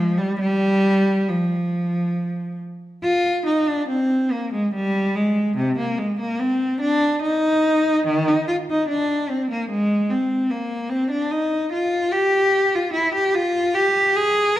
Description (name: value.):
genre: classical, baroque-style suite movement for unaccompanied cello.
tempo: 67-75 BPM.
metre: 3/4.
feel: rubato.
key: C minor from 3.0 s.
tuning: A4 = 440 Hz.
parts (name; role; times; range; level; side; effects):
rich cello; solo; 0.0-14.6 s; C3 to Bb4; -18 LUFS; equal; none.
room: wet recital hall reverb, RT60 1.5 s.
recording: minimal, uncompressed stereo recording.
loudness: -18 LUFS.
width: side -13 dB against mid.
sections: 0.0-3.0 A section; 3.0-14.6 A section.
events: none.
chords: none.